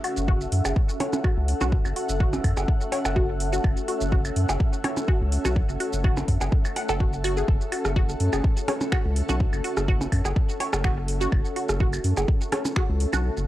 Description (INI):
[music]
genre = minimal techno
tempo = 125 BPM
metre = 4/4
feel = swing 54% on 16ths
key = F# minor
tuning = A4 = 440 Hz
[part]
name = resonant blip pluck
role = riff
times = 0.0-13.2 s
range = F#4 to F#5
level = -31 LUFS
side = equal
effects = phaser, sidechain pumping, tape echo
[part]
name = house drum kit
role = drums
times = 0.0-13.5 s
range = finger snaps, hi-hat, shaker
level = -35 LUFS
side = right 1 dB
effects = none
[part]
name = electronic claves, percussion blips and rim click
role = percussion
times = 0.0-13.2 s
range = none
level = -29 LUFS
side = right 1 dB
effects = analog delay
[part]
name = granular cloud pad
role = texture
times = 0.0-13.5 s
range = C#4 to F#5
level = -31 LUFS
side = equal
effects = built-in reverb, sidechain pumping
[part]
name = saturated sub bass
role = bass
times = 0.2-13.5 s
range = F#1 to F#2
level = -26 LUFS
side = equal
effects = sidechain pumping
[part]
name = electronic kick drum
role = drums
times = 0.3-12.9 s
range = none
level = -23 LUFS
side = equal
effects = none
[sound]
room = little or no reverb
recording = dry, gritty hardware recording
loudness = -22 LUFS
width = side -15 dB against mid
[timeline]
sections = 0.0-13.5 A section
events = break 13.2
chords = 0.0 F#m7